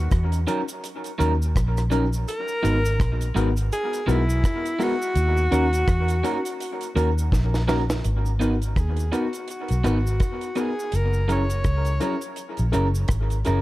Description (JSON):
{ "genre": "lovers rock reggae", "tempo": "83 BPM", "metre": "4/4", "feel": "swing 59% on 16ths", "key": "G# minor", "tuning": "A4 = 441 Hz", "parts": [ { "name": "breathy alto saxophone", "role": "melody", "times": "0.0-12.3 s", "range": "E4 to C#5", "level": "-28 LUFS", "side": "equal", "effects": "tape echo" }, { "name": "vintage muted fingered electric bass", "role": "bass", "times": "0.0-13.6 s", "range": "F#1 to E2", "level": "-22 LUFS", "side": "equal", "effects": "none" }, { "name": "deep reggae drum kit", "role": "drums", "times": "0.1-13.6 s", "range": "hi-hat, kick drum, rim click, snare drum", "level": "-25 LUFS", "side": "equal", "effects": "none" }, { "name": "cabasa", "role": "percussion", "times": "0.1-13.6 s", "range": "none", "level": "-43 LUFS", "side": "right 3 dB", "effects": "none" }, { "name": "tine electric piano", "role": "accompaniment", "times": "0.5-13.6 s", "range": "B3 to A#4", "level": "-29 LUFS", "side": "left 3 dB", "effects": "medium stereo tremolo, dub echo" }, { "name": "electric guitar through a small old amp", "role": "stabs", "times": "0.5-13.6 s", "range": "F#3 to B4", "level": "-30 LUFS", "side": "right 4 dB", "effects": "dub echo" } ], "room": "studio reverb", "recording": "dark, warm production", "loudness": "-20 LUFS", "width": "side -17 dB against mid", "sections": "0.0-8.0 A section; 8.0-13.6 B section", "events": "drum fill 7.3-8.0", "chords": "0.0 D#m7; 2.3 G#m7; 5.2 D#m7; 8.0 G#m7; 10.9 F#7" }